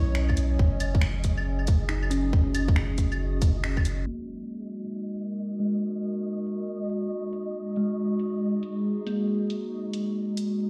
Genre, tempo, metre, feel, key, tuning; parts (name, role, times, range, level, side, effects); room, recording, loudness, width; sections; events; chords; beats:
future garage; 138 BPM; 4/4; swing 63% on 16ths; A4 = 439 Hz
bell-like tine electric piano; accompaniment; 0.0-10.7 s; G#3 to B4; -33 LUFS; equal; sidechain pumping, low-pass filter, digital delay
warbly tape-like pad; sustained chords; 0.0-10.7 s; B2 to C#5; -35 LUFS; equal; chorus, built-in reverb, sidechain pumping
warm sub bass; bass; 0.0-4.0 s; F#1 to B1; -30 LUFS; equal; sidechain pumping
flickering grainy texture; texture; 0.0-10.7 s; D#5; -46 LUFS; equal; built-in reverb
garage drum kit; drums; 0.1-10.5 s; claves, finger snaps, hi-hat, shaker; -37 LUFS; equal; small room ambience
electronic kick drum; drums; 0.3-3.8 s; -25 LUFS; equal; small room ambience
light reverb; played on a big sound system in a bare room, stone room reverb, vinyl crackle, low-pass filter; -27 LUFS; mono
0.0-4.1 A section; 4.1-10.7 B section
band accent 3.6; filter sweep on tine electric piano 4.1-10.7; filter sweep 4.1-10.7
0.0 Bsus2; 0.6 F#5; 4.1 G#5
0.15 | 0.59 1.02 1.46 1.89 | 2.33 2.76 3.19 3.63 | 4.06 4.50 4.93 5.37 | 5.80 6.24 6.67 7.11 | 7.54 7.98 8.41 8.85 | 9.28 9.72 10.15 10.59